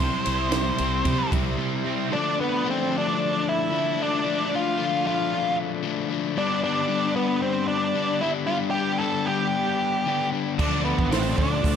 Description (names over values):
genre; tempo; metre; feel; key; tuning
indie rock; 113 BPM; 4/4; straight; D dorian; A4 = 439 Hz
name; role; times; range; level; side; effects
octave-fuzz lead guitar; melody; 0.0-11.8 s; B3 to C5; -25 LUFS; right 1 dB; distortion, slapback echo
overdriven combo organ; sustained chords; 0.0-11.8 s; F3 to C6; -37 LUFS; right 3 dB; none
cranked stack guitar; riff; 0.0-2.1, 10.6-11.8 s; C3 to E4; -29 LUFS; right 11 dB; overdrive, ensemble chorus, slapback echo
overdriven electric guitar; riff; 0.0-11.8 s; G2 to E4; -26 LUFS; left 11 dB; none
growling fingered electric bass; bass; 0.0-1.5, 10.6-11.8 s; A1 to C3; -27 LUFS; equal; overdrive
compact cocktail drum kit; drums; 0.3-1.5, 10.6-11.8 s; crash cymbal, hi-hat, kick drum, ride cymbal, snare drum; -27 LUFS; right 2 dB; none
synth chime; second line; 10.6-11.8 s; B5 to D6; -37 LUFS; left 3 dB; ensemble chorus
room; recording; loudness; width
light reverb, small room ambience; none; -22 LUFS; side -8 dB against mid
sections
0.0-2.1 A section; 2.1-11.8 B section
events
lead electric guitar solo 0.0-2.1; break 1.6-2.1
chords
0.0 C; 2.1 Dm; 6.4 G; 10.6 Dm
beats
0.53 1.06 1.59 | 2.13 2.66 3.19 3.72 | 4.25 4.78 5.31 5.84 | 6.37 6.90 7.43 7.96 | 8.49 9.01 9.54 10.07 | 10.59 11.12 11.64